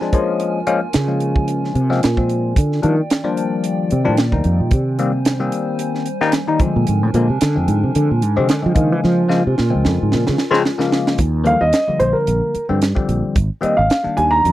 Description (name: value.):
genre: electric jazz fusion.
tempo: 111 BPM.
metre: 4/4.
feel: swing 55% on 16ths.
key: unclear.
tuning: A4 = 441 Hz.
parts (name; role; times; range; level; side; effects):
bell-like tine electric piano; accompaniment; 0.0-14.5 s; Db3 to Eb4; -20 LUFS; left 4 dB; phaser.
warbly tape-like pad; sustained chords; 0.0-11.2 s; Eb3 to Ab5; -27 LUFS; right 1 dB; chorus, built-in reverb.
tight funk drum kit; drums; 0.0-14.5 s; hi-hat, kick drum, snare drum; -19 LUFS; right 1 dB; none.
fretless electric bass; bass; 0.9-14.5 s; Ab1 to F3; -17 LUFS; right 1 dB; analog chorus.
dark grand piano; melody; 11.5-14.5 s; Bb4 to Bb5; -16 LUFS; right 1 dB; slapback echo.
room: little or no reverb.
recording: dry, close 1970s-style studio recording.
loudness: -15 LUFS.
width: side -14 dB against mid.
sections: 0.0-11.2 A section; 11.2-14.5 B section.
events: fretless electric bass solo 0.0-11.2; drum fill 9.0-11.2.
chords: 0.1 Bbm9; 2.6 Ebmaj7; 4.7 Abmaj7; 6.6 Bb7; 8.8 Dbmaj13; 11.2 Ebmaj7; 13.4 Abmaj7.